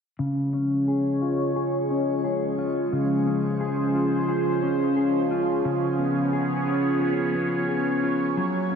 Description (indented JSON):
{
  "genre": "dream pop",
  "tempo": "88 BPM",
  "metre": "4/4",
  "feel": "straight",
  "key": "Db major",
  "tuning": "A4 = 440 Hz",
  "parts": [
    { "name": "phased analog pad", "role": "sustained chords", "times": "0.6-8.8 s", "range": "F3 to Db5", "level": "-25 LUFS", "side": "right 1 dB", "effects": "phaser, chorus, low-pass filter, shimmer reverb" },
    { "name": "mellow electric guitar", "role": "arpeggios", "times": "0.2-8.8 s", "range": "Db3 to Ab4", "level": "-25 LUFS", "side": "left 2 dB", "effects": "wide subtle chorus, low-pass filter, tape echo, shimmer reverb" }
  ],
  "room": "wet lush hall reverb, RT60 2.6 s",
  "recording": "dreamy mix soaked in reverb",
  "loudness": "-22 LUFS",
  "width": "side -6 dB against mid",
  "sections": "0.2-8.8 A section",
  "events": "filter sweep 0.2-8.8",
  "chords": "0.2 Db; 5.6 Db7",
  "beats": "| 0.19 0.88 1.56 2.24 | 2.92 3.60 4.28 4.97 | 5.65 6.33 7.01 7.69 | 8.38"
}